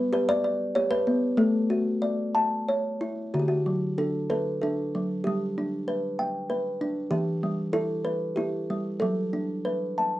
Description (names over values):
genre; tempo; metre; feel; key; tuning
children's music, lullaby; 95 BPM; 3/4; rubato; D major; A4 = 441 Hz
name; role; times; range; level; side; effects
kalimba; solo; 0.0-10.2 s; D3 to A5; -24 LUFS; equal; none
room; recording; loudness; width
light reverb; none; -25 LUFS; side -15 dB against mid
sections
0.0-3.3 A section; 3.3-10.2 B section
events
none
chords
0.0 G; 1.4 D/A; 2.7 A; 3.3 D; 5.3 G; 7.1 Em; 9.0 D; 9.7 Asus2